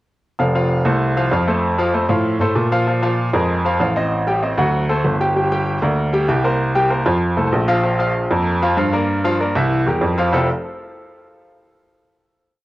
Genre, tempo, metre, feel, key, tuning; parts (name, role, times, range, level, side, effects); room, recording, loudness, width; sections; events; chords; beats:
latin, salsa; 193 BPM; 4/4; straight; F major; A4 = 440 Hz
bright upright piano; accompaniment; 0.4-10.5 s; E3 to G5; -19 LUFS; left 1 dB; cassette tape
clear baby grand piano; bass; 0.4-10.5 s; F1 to Bb2; -18 LUFS; right 1 dB
moderate spring reverb, RT60 2.6 s; home recording on cassette; -15 LUFS; side -17 dB against mid
0.4-10.3 verse; 10.3-11.6 final chord
0.4 F; 2.9 Bbsus2; 4.1 Am7b5; 4.7 D7; 5.4 Gm; 6.6 C5; 7.2 F; 7.8 Bbmaj7; 9.1 Gm7; 9.7 C7; 10.3 Fmaj9
| 0.39 0.70 1.01 1.32 | 1.63 1.94 2.25 2.56 | 2.87 3.18 3.49 3.80 | 4.11 4.42 4.73 5.04 | 5.36 5.67 5.98 6.29 | 6.60 6.91 7.22 7.53 | 7.84 8.15 8.46 8.77 | 9.08 9.39 9.71 10.02 | 10.33